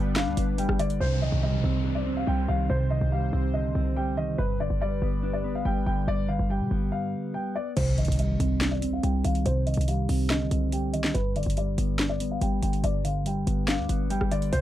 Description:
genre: hip hop, trap.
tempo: 142 BPM.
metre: 4/4.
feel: half-time.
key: C harmonic minor.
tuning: A4 = 440 Hz.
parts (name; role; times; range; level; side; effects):
dark baby grand piano; melody; 0.0-14.6 s; B4 to G5; -33 LUFS; left 1 dB; low-pass filter.
mellow electric guitar; accompaniment; 0.0-14.6 s; G2 to D4; -28 LUFS; equal; low-pass filter.
sweeping resonant pad; sustained chords; 0.0-6.9 s; C3 to C5; -36 LUFS; right 2 dB; chorus.
short 808-style bass; bass; 0.0-14.6 s; F1 to B2; -28 LUFS; equal; none.
trap drum kit; drums; 0.2-1.0, 7.8-14.6 s; crash cymbal, handclaps, hi-hat, rim click, snare drum; -31 LUFS; equal; none.
downlifter and impact; sound effects; 1.0-4.4, 7.8-9.5 s; none; -36 LUFS; equal; none.
room: light reverb.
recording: dark, warm production.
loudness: -24 LUFS.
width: side -13 dB against mid.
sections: 0.0-1.0 A section; 1.0-7.8 B section; 7.8-14.6 C section.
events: stop 6.9-7.8; impact 7.8-9.5; filter sweep 7.8-14.5.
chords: 0.0 G; 1.0 Cmadd9; 4.4 G; 7.8 Cmadd9; 11.1 G.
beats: 0.16 0.58 | 1.01 1.43 1.85 2.27 | 2.70 3.12 3.54 3.96 | 4.39 4.81 5.23 5.65 | 6.08 6.50 6.92 7.34 | 7.77 8.19 8.61 9.03 | 9.46 9.88 10.30 10.72 | 11.15 11.57 11.99 12.41 | 12.84 13.26 13.68 14.10 | 14.53.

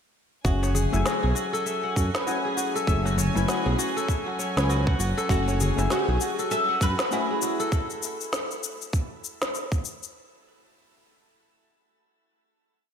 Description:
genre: organic downtempo.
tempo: 99 BPM.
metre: 4/4.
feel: swing 59% on 16ths.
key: F# minor.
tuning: A4 = 441 Hz.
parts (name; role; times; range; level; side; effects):
deep mellow chord stab; accompaniment; 0.4-7.7 s; A3 to G#5; -32 LUFS; left 4 dB; chorus, sidechain pumping, digital delay, shimmer reverb, slapback echo.
kora; arpeggios; 0.4-8.9 s; F#4 to F#5; -30 LUFS; equal; digital delay, shimmer reverb.
smooth synth bass; bass; 0.4-7.0 s; F#1 to F#2; -25 LUFS; right 1 dB; sidechain pumping.
electronic kick drum; drums; 0.4-9.8 s; none; -26 LUFS; right 1 dB; overdrive.
dark studio string section; sustained chords; 0.5-7.7 s; F#3 to G#5; -34 LUFS; equal; sidechain pumping, shimmer reverb.
electronic shaker and snare drum; drums; 0.5-10.1 s; none; -31 LUFS; left 2 dB; overdrive.
darbuka; percussion; 0.6-7.6 s; none; -37 LUFS; left 4 dB; none.
oud; melody; 5.3-7.7 s; E4 to B4; -29 LUFS; equal; ping-pong delay, shimmer reverb.
room: moderate lush hall reverb, RT60 2.0 s, studio ambience.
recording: big arena sound.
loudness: -23 LUFS.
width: side -8 dB against mid.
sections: 0.4-10.1 groove.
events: none.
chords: 0.4 F#m9.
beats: | 0.45 1.05 1.66 2.27 | 2.87 3.48 4.08 4.69 | 5.30 5.90 6.51 7.12 | 7.72 8.33 8.93 9.54.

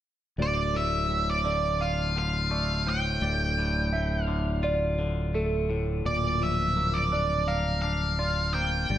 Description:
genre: post-rock.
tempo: 85 BPM.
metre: 4/4.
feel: straight.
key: D minor.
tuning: A4 = 440 Hz.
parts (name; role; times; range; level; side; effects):
octave-fuzz lead guitar; melody; 0.4-9.0 s; D5 to G5; -28 LUFS; right 1 dB; distortion, slapback echo.
mellow electric guitar; arpeggios; 0.4-9.0 s; A4 to F5; -33 LUFS; right 3 dB; phaser, slapback echo.
twangy electric guitar; arpeggios; 0.4-9.0 s; D2 to Bb4; -32 LUFS; left 3 dB; phaser, slapback echo.
growling fingered electric bass; bass; 0.4-9.0 s; D1 to G1; -29 LUFS; equal; overdrive.
room: moderate plate reverb, RT60 2.5 s.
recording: none.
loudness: -25 LUFS.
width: side -11 dB against mid.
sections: 0.4-9.0 A section.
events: none.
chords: 0.4 Dm; 6.1 Bb/D.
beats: | 0.39 1.10 1.81 2.52 | 3.23 3.94 4.65 5.36 | 6.07 6.78 7.49 8.20 | 8.90.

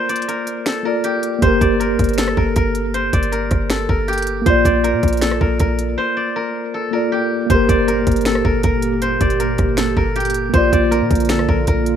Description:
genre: hip hop, trap.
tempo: 158 BPM.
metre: 4/4.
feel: half-time.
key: G minor.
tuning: A4 = 440 Hz.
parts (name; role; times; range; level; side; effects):
steel-string zither; melody; 0.0-12.0 s; G4 to D5; -21 LUFS; left 2 dB; low-pass filter, digital delay.
mellow tine electric piano; accompaniment; 0.0-12.0 s; Bb3 to D5; -20 LUFS; equal; medium stereo tremolo, low-pass filter.
trap drum kit; drums; 0.1-12.0 s; finger snaps, hi-hat, kick drum, rim click, snare drum; -20 LUFS; equal; none.
clean 808-style bass; bass; 1.4-12.0 s; G1 to Bb2; -21 LUFS; equal; none.
dark analog pad; sustained chords; 7.5-12.0 s; Bb2 to G4; -23 LUFS; right 4 dB; chorus.
room: little or no reverb.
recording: rough home demo mix.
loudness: -15 LUFS.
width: side -9 dB against mid.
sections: 0.0-12.0 A section.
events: break 0.0-1.4, 6.0-7.5.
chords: 0.0 Bb; 1.4 Gm; 4.5 Bb; 7.5 Gm; 10.5 Bb.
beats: 0.28 0.66 1.04 | 1.42 1.80 2.18 2.56 | 2.94 3.32 3.70 4.08 | 4.46 4.84 5.22 5.60 | 5.98 6.36 6.74 7.12 | 7.50 7.88 8.26 8.64 | 9.02 9.40 9.78 10.16 | 10.54 10.92 11.30 11.68.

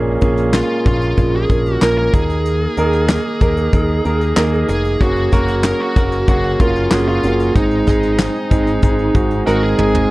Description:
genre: piano-driven pop.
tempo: 94 BPM.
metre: 4/4.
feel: straight.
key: unclear.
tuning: A4 = 440 Hz.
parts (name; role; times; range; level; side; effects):
clear concert grand piano; accompaniment; 0.0-10.1 s; Ab2 to Bb4; -18 LUFS; right 2 dB; none.
bright tonewheel organ; sustained chords; 0.0-10.1 s; Eb3 to Bb4; -31 LUFS; equal; none.
modern bright picked electric bass; bass; 0.0-10.1 s; F1 to Eb2; -20 LUFS; equal; none.
soft brush drum kit; drums; 0.2-10.1 s; handclaps, hi-hat, kick drum, snare drum, toms; -17 LUFS; equal; none.
bluesy overdriven lead guitar; melody; 0.6-10.1 s; Eb4 to Bb4; -20 LUFS; equal; distortion.
room: light reverb.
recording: dark, warm production.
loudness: -13 LUFS.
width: side -19 dB against mid.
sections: 0.0-10.1 A section.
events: drum fill 9.5-10.1.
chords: 0.0 Bbm7; 2.1 Ebsus4; 5.0 Gbadd9; 7.6 Ab.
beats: 0.54 1.18 1.82 | 2.46 3.10 3.73 4.37 | 5.01 5.64 6.28 6.92 | 7.56 8.20 8.83 9.47 | 10.11.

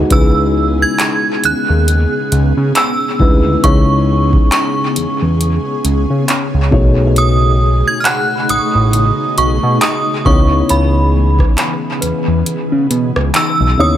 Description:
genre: contemporary R&B.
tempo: 68 BPM.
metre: 4/4.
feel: swing 58% on 16ths.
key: C# minor.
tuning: A4 = 440 Hz.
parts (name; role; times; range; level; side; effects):
felt-muted upright piano; accompaniment; 0.0-14.0 s; G#2 to G#5; -19 LUFS; left 3 dB; tape echo.
ethereal airy pad; sustained chords; 0.0-14.0 s; C#3 to G#4; -20 LUFS; left 1 dB; ensemble chorus, built-in reverb, tremolo.
fat analog bass; bass; 0.0-14.0 s; A1 to C#3; -13 LUFS; equal; none.
celesta; texture; 0.0-0.8, 6.3-14.0 s; D#4 to C#6; -27 LUFS; equal; tape echo.
synth chime; melody; 0.1-13.9 s; B5 to G#6; -17 LUFS; right 2 dB; ensemble chorus, tape echo.
booming analog drum machine; drums; 0.1-13.6 s; handclaps, hi-hat, kick drum, rim click; -16 LUFS; equal; tape echo.
room: digital ambience.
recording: echo-heavy mix.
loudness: -11 LUFS.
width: side -11 dB against mid.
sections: 0.0-14.0 A section.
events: kick muted 12.5-14.0.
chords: 0.1 C#m7; 6.7 B13; 10.3 C#m7.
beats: | 0.10 0.99 1.87 2.75 | 3.63 4.52 5.40 6.28 | 7.16 8.05 8.93 9.81 | 10.69 11.58 12.46 13.34.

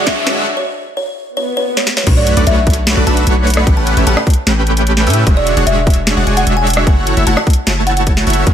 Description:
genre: future bass.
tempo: 150 BPM.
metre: 4/4.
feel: half-time.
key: B minor.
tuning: A4 = 440 Hz.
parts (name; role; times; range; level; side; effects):
dense compressed supersaw; riff; 0.0-8.5 s; G#3 to A5; -16 LUFS; equal; sidechain pumping.
riser, swell and sub drop; sound effects; 0.0-3.7 s; none; -22 LUFS; left 1 dB; none.
buzzing kalimba; melody; 0.1-8.0 s; C#5 to A5; -20 LUFS; right 1 dB; sidechain pumping, tape echo.
electronic kick drum; drums; 0.1-8.5 s; none; -12 LUFS; equal; none.
trap drum kit; drums; 0.1-8.5 s; crash cymbal, hi-hat, rim click, snare drum; -18 LUFS; equal; none.
long sustained 808-style bass; bass; 2.1-8.5 s; E1 to A2; -15 LUFS; equal; sidechain pumping.
room: light reverb, digital ambience.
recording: high-pass filter.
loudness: -10 LUFS.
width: side -9 dB against mid.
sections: 0.0-2.1 A section; 2.1-8.5 B section.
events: build-up 0.0-2.1; drum fill 0.0-0.5, 1.8-2.1; riser 0.0-0.5; filter sweep on kalimba 0.0-2.1; break 0.5-2.1; swell 1.4-2.1; drop 2.1-8.5; impact 2.1-3.7.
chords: 0.5 N.C.; 2.1 Bm9; 3.7 A9; 5.3 E13; 6.9 F#m7.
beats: 0.07 | 0.47 0.87 1.27 1.67 | 2.07 2.47 2.87 3.27 | 3.67 4.07 4.47 4.87 | 5.27 5.67 6.07 6.47 | 6.87 7.27 7.67 8.07 | 8.47.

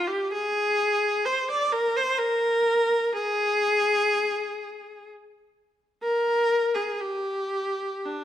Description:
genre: classical, free, expressive piece for unaccompanied viola.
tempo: 54-66 BPM.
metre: 3/4.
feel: rubato.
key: unclear.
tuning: A4 = 440 Hz.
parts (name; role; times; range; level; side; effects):
rich viola; solo; 0.0-8.2 s; D4 to D5; -23 LUFS; equal; none.
room: moderate recital hall reverb, RT60 1.6 s.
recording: none.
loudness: -22 LUFS.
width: side -11 dB against mid.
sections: 0.0-8.2 A section.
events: none.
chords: none.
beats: | 0.32 1.25 2.19 | 3.14 4.12 5.10 | 6.05 7.02 8.06.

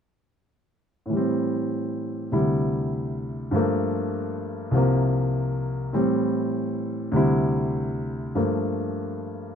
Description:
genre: solo jazz.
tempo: 100 BPM.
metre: 4/4.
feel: swing 68% on 8ths.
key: unclear.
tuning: A4 = 440 Hz.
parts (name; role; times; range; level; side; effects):
warm baby grand piano; solo; 1.1-9.6 s; C2 to E4; -23 LUFS; equal; none.
room: moderate studio reverb, RT60 0.7 s.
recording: minimal, uncompressed stereo recording.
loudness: -23 LUFS.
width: side -8 dB against mid.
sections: 1.1-9.6 A section.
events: none.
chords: 1.1 Am7; 2.3 D9sus4; 3.5 Gm9; 4.7 C7sus4; 5.9 Am7; 7.1 D9sus4; 8.3 Gm9.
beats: | 1.11 1.71 2.32 2.92 | 3.52 4.13 4.73 5.33 | 5.94 6.54 7.14 7.75 | 8.35 8.95.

